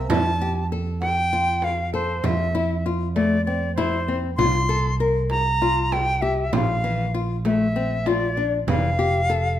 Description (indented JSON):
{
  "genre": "contemporary instrumental, chamber music in an uneven meter",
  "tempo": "196 BPM (eighths)",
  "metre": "7/8",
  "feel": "straight",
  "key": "F major",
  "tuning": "A4 = 436 Hz",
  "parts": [
    { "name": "picked electric bass", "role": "bass", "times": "0.0-9.6 s", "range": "F1 to F2", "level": "-25 LUFS", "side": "right 1 dB", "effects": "none" },
    { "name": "bright reedy silver concert flute", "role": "melody", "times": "0.1-9.6 s", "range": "C5 to C6", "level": "-24 LUFS", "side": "equal", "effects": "none" },
    { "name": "nylon-string guitar", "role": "arpeggios", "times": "0.1-9.6 s", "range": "E3 to Bb4", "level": "-25 LUFS", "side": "left 4 dB", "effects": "none" },
    { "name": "frame drum", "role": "percussion", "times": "0.1-9.0 s", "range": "none", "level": "-28 LUFS", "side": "right 5 dB", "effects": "none" }
  ],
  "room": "moderate recital hall reverb, RT60 1.4 s",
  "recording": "none",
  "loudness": "-20 LUFS",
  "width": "side -11 dB against mid",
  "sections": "0.1-9.6 A section",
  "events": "none",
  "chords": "0.1 Fmaj7; 4.4 C7sus4; 6.5 Bb; 8.7 Fmaj7",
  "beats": "| 0.10 0.40 0.71 1.01 1.32 1.63 1.93 | 2.24 2.55 2.85 3.16 3.46 3.77 4.08 | 4.38 4.69 5.00 5.30 5.61 5.92 6.22 | 6.53 6.83 7.14 7.45 7.75 8.06 8.37 | 8.67 8.98 9.29 9.59"
}